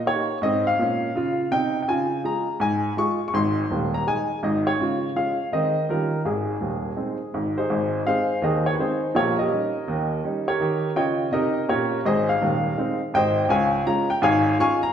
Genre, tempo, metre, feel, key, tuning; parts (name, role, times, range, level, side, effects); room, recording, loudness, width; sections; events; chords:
jazz, stride piano; 165 BPM; 4/4; swing 65% on 8ths; Ab major; A4 = 440 Hz
clear upright piano; solo; 0.1-14.9 s; Eb1 to Db6; -21 LUFS; equal
wet recital hall reverb, RT60 1.5 s; recorded in a church or concert hall; -21 LUFS; side -8 dB against mid
0.0-7.7 A section; 7.7-14.9 A section
0.4 Ab; 1.9 Db; 3.3 Ab; 4.8 Db; 5.5 Ab/Eb; 5.9 Eb9; 6.2 Ab; 9.1 Eb7/Bb; 10.6 Eb7; 12.0 Ab; 13.5 Db